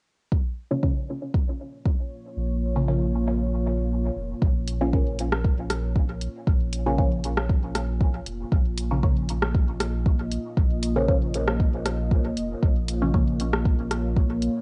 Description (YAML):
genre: dub techno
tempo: 117 BPM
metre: 4/4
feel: straight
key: Bb minor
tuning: A4 = 440 Hz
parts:
  - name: deep dark ambient pad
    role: sustained chords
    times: 2.1-14.6 s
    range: Bb3 to Eb5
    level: -34 LUFS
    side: equal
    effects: chorus, built-in reverb, sidechain pumping, cassette tape
  - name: electronic kick drum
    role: drums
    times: 0.3-14.3 s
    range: none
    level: -25 LUFS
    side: equal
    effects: overdrive, cassette tape
  - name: filtered dub chord stab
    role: stabs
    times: 0.7-13.4 s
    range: Db3 to Db4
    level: -32 LUFS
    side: equal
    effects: phaser, sidechain pumping, cassette tape, dub echo
  - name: warm sub bass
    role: bass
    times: 2.4-14.5 s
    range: F1 to Bb1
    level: -30 LUFS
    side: equal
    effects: sidechain pumping
  - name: punchy analog drum machine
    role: drums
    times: 4.7-14.5 s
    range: hi-hat, rim click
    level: -31 LUFS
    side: equal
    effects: overdrive, cassette tape, dub echo
room: digital ambience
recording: home recording on cassette, nothing above 10.3 kHz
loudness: -25 LUFS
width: mono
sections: 0.3-4.4 A section; 4.4-14.6 B section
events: filter sweep on synth stab 0.3-4.4; kick drops out 2.4-4.4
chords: 0.3 Bbm